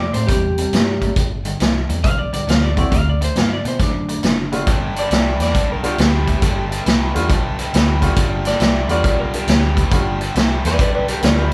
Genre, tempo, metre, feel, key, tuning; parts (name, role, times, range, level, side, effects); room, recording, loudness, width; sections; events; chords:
electric blues shuffle; 137 BPM; 4/4; swing 66% on 8ths; G mixolydian; A4 = 439 Hz
electric slide guitar; melody; 0.0-4.7 s; D4 to F5; -26 LUFS; equal
clear grand piano; accompaniment; 0.0-0.1, 2.8-11.5 s; G2 to F#4; -27 LUFS; equal
cranked stack guitar; riff; 0.0-11.5 s; G2 to B3; -27 LUFS; equal; overdrive
vintage muted fingered electric bass; bass; 0.0-11.5 s; F#1 to B2; -24 LUFS; equal
vintage drum kit; drums; 0.1-11.5 s; hi-hat, kick drum, snare drum; -20 LUFS; equal
electric guitar through a small old amp; second line; 5.0-11.5 s; G4 to D5; -26 LUFS; equal
moderate large studio reverb, RT60 1.1 s; band playing live in one room; -17 LUFS; mono
0.0-4.7 A section; 4.7-11.5 B section
clean electric guitar solo 4.7-11.5
0.0 C; 1.2 G; 2.9 D; 4.7 G7